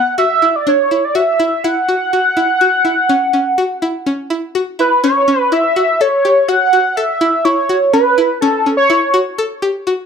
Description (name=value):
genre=progressive instrumental, progressive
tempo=124 BPM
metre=7/4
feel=straight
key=F# phrygian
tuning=A4 = 441 Hz
part: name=octave-doubled lead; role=melody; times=0.0-9.2 s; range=A4 to F#5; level=-12 LUFS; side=right 1 dB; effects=chorus, phaser, plate reverb, analog delay
part: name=string-like resonator pluck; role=arpeggios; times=0.0-10.1 s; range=B3 to A4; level=-18 LUFS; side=left 2 dB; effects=chorus, plate reverb
room=wet studio ambience, RT60 0.5 s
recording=none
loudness=-12 LUFS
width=side -6 dB against mid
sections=0.0-5.0 A section; 5.0-10.1 B section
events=none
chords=0.0 E5; 1.6 F#5; 5.0 F#m7